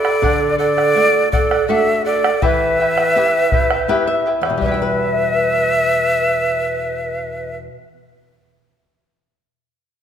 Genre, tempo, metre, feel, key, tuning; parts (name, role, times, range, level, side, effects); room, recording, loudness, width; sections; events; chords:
andean folk, Andean ensemble; 82 BPM; 3/4; straight; E minor; A4 = 439 Hz
breathy bright quena; melody; 0.0-7.6 s; D5 to E5; -18 LUFS; equal
breathy bright pan flute; second line; 0.0-7.6 s; A4 to B4; -20 LUFS; right 4 dB
charango; accompaniment; 0.0-8.2 s; E4 to B5; -22 LUFS; left 2 dB
flamenco guitar; accompaniment; 0.0-8.1 s; E2 to E5; -24 LUFS; left 4 dB
bombo; percussion; 0.0-5.0 s; -22 LUFS; equal
moderate concert hall reverb, RT60 1.8 s; minimal, uncompressed stereo recording; -14 LUFS; side -8 dB against mid
0.0-4.6 A section; 4.6-6.8 B section
nylon-string guitar fill 3.5-4.6
0.2 D; 2.4 Em